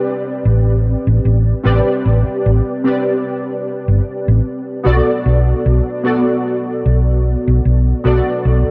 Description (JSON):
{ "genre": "vaporwave", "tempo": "75 BPM", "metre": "4/4", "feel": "swing 55% on 16ths", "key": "A dorian", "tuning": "A4 = 441 Hz", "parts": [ { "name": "warbly lo-fi synth keys", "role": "accompaniment", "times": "0.0-8.7 s", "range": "B3 to D5", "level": "-20 LUFS", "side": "equal", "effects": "ensemble chorus, analog delay" }, { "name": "hollow-body short-scale fingered electric bass", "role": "bass", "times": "0.5-8.7 s", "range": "G1 to B1", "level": "-15 LUFS", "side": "equal", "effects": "none" } ], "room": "light reverb", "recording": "dark, warm production, cassette tape", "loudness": "-15 LUFS", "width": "mono", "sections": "0.0-8.7 A section", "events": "none", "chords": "0.0 Am11; 4.9 Bm7" }